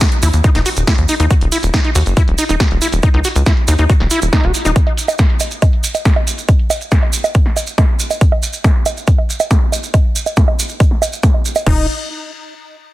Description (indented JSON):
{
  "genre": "psychedelic trance",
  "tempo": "139 BPM",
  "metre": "4/4",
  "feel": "straight",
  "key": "Eb phrygian",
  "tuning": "A4 = 440 Hz",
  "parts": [
    { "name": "overdriven acid bass", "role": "riff", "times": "0.0-4.7, 11.7-11.9 s", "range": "Eb4 to Gb4", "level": "-20 LUFS", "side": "left 1 dB", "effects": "distortion, auto-pan, sidechain pumping, dub echo" },
    { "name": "big-room dance drum kit", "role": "drums", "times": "0.0-11.8 s", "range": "bongos, crash cymbal, hi-hat, snare drum", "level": "-20 LUFS", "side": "right 2 dB", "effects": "low-pass filter on hats, low-pass filter on perc, low-pass filter on snare, low-pass filter on cymbals" },
    { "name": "electronic kick drum", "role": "drums", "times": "0.0-11.8 s", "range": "none", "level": "-13 LUFS", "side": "equal", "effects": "none" },
    { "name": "maracas", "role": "percussion", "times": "0.0-11.6 s", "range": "none", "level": "-22 LUFS", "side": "right 4 dB", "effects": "none" },
    { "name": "downlifter", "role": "sound effects", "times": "0.0-1.3 s", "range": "none", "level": "-35 LUFS", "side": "equal", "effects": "none" },
    { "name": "tight sequencer bass", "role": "bass", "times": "0.2-4.7, 11.7-11.9 s", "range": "Eb1 to Eb2", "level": "-14 LUFS", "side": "equal", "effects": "none" }
  ],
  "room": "little or no reverb",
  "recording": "dense, heavily limited modern master",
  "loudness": "-12 LUFS",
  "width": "side -16 dB against mid",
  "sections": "0.0-11.7 A section; 11.7-12.9 B section",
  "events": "filter sweep on drum 0.0-11.7",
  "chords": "none",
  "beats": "0.01 0.44 0.87 | 1.31 1.74 2.17 2.60 | 3.03 3.46 3.90 4.33 | 4.76 5.19 5.62 6.05 | 6.49 6.92 7.35 7.78 | 8.21 8.64 9.07 9.51 | 9.94 10.37 10.80 11.23 | 11.66"
}